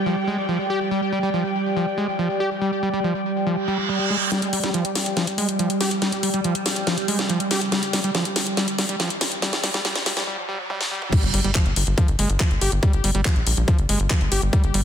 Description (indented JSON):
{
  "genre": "psychedelic trance",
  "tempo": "141 BPM",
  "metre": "4/4",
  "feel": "straight",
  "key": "unclear",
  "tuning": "A4 = 437 Hz",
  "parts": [
    { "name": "evolving wavetable pad", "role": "sustained chords", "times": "0.0-14.8 s", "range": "G3", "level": "-28 LUFS", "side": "right 2 dB", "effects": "chorus, built-in reverb, sidechain pumping" },
    { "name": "airy breathy pad", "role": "texture", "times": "0.0-10.3 s", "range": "G4 to G5", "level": "-28 LUFS", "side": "left 1 dB", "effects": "chorus, sidechain pumping" },
    { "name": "formant-sweep wobble bass", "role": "second line", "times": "0.1-0.7 s", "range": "G3", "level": "-38 LUFS", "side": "right 1 dB", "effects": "none" },
    { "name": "overdriven acid bass", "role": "riff", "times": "0.1-14.8 s", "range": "F3 to G4", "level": "-26 LUFS", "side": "equal", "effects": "distortion, auto-pan, sidechain pumping, ping-pong delay" },
    { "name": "reverse cymbal, riser and impact", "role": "sound effects", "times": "3.6-12.8 s", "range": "none", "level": "-30 LUFS", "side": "right 3 dB", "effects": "none" },
    { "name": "garage drum kit", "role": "drums", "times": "4.3-14.8 s", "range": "crash cymbal, handclaps, hi-hat, snare drum, toms", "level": "-24 LUFS", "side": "left 1 dB", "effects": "soft clipping on snare, high-pass filter on snare, studio reverb, high-pass filter on hats, high-pass filter on toms, high-pass filter on cymbals" },
    { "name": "electronic kick drum", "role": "drums", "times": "11.1-14.6 s", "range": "none", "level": "-19 LUFS", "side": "equal", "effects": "studio reverb" },
    { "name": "tight sequencer bass", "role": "bass", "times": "11.2-14.8 s", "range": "G1 to Bb1", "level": "-21 LUFS", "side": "equal", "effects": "tube saturation" }
  ],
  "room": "light reverb, digital ambience",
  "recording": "dense, heavily limited modern master, high-pass filter",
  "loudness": "-20 LUFS",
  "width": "side -9 dB against mid",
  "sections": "0.0-4.3 A section; 4.3-11.1 B section; 11.1-14.8 C section",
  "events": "filter sweep on ambient pad 0.0-4.3; reverse cymbal 3.6-4.3; build-up 4.3-11.1; drum fill 4.3-10.3, 10.7-11.1; riser 4.3-11.1; filter sweep on acid bass 4.3-11.1; filter sweep 4.3-11.1; break 10.3-11.1; drop 11.1-14.8; impact 11.1-12.8",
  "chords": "0.0 G5; 11.1 G7(no3)"
}